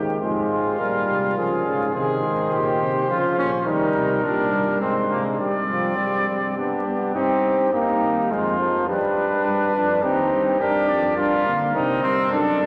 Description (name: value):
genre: classical, imitative canzona for brass ensemble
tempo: 104 BPM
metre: 3/4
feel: straight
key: C minor from 3.7 s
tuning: A4 = 444 Hz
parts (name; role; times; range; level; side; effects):
- mellow trumpet; melody; 0.0-12.7 s; Eb4 to D5; -28 LUFS; equal; none
- clear trombone; accompaniment; 0.0-12.7 s; Db3 to D4; -25 LUFS; equal; none
- dark bass trombone; bass; 0.0-12.7 s; Eb2 to Eb3; -32 LUFS; equal; none
- mellow trumpet; second line; 0.2-12.7 s; Bb3 to Ab4; -27 LUFS; equal; none
room: wet cathedral reverb, RT60 5.1 s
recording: vinyl crackle, nothing above 10.5 kHz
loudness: -21 LUFS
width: mono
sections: 0.2-7.2 A section; 7.2-12.7 B section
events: none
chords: 0.2 Fm; 1.4 Db; 2.0 Ab; 3.1 Bbm/Db; 3.7 Eb; 4.8 Ab; 5.4 Gsus4; 6.6 G; 7.2 Cm/G; 8.3 Fm; 8.9 G; 10.0 Cm/Eb; 10.6 Gm; 11.8 Cm